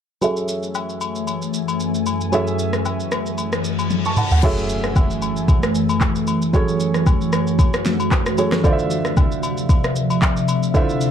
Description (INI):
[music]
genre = amapiano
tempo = 114 BPM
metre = 4/4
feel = swing 55% on 16ths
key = F# minor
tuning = A4 = 440 Hz
[part]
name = clear concert grand piano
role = accompaniment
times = 0.2-11.1 s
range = D3 to C#6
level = -24 LUFS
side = right 3 dB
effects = low-pass filter
[part]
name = glassy FM pad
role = sustained chords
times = 0.7-11.1 s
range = D2 to G#5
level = -21 LUFS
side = left 1 dB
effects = ensemble chorus, built-in reverb, phaser, sidechain pumping, low-pass filter
[part]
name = smooth R&B drum kit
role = drums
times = 0.2-11.1 s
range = crash cymbal, handclaps, kick drum, rim click, shaker, snare drum, toms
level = -19 LUFS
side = equal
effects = none
[part]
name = agogo bells and woodblock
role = percussion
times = 0.2-10.9 s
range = none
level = -29 LUFS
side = left 6 dB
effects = none
[part]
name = reverse cymbal and impact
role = sound effects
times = 3.6-6.5 s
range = none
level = -31 LUFS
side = left 2 dB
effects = none
[sound]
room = light reverb, digital ambience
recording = dark, warm production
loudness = -17 LUFS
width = side -8 dB against mid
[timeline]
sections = 0.2-4.4 A section; 4.4-11.1 B section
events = filter sweep 0.2-4.4; reverse cymbal 3.6-4.4; drum fill 3.9-4.4; impact 4.4-6.5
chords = 0.2 F#m9; 8.6 Dm9